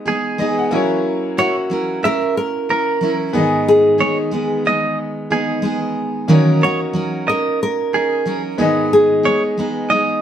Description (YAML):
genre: pop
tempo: 92 BPM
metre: 4/4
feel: swing 55% on 16ths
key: G# minor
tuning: A4 = 440 Hz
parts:
  - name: bright upright piano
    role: accompaniment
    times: 0.0-10.2 s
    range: A#3 to G#5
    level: -25 LUFS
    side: left 4 dB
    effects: none
  - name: picked steel-string acoustic guitar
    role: accompaniment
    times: 0.0-10.2 s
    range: G#2 to A#4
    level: -19 LUFS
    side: right 1 dB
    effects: none
  - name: direct-recorded clean electric guitar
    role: arpeggios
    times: 0.1-10.2 s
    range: G#4 to E5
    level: -19 LUFS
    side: right 2 dB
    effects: none
  - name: nylon-string guitar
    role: melody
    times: 1.4-9.9 s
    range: F#4 to A#4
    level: -18 LUFS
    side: equal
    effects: none
room: light reverb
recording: band playing live in one room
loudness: -15 LUFS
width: side -9 dB against mid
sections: 0.0-10.2 A section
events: upright piano fill 0.1-1.1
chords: 0.0 G#m; 0.7 F#7; 3.3 G#m; 6.3 D#m7; 8.6 G#m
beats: 0.40 | 1.05 1.71 2.36 3.02 | 3.67 4.33 4.98 5.64 | 6.29 6.95 7.61 8.26 | 8.92 9.58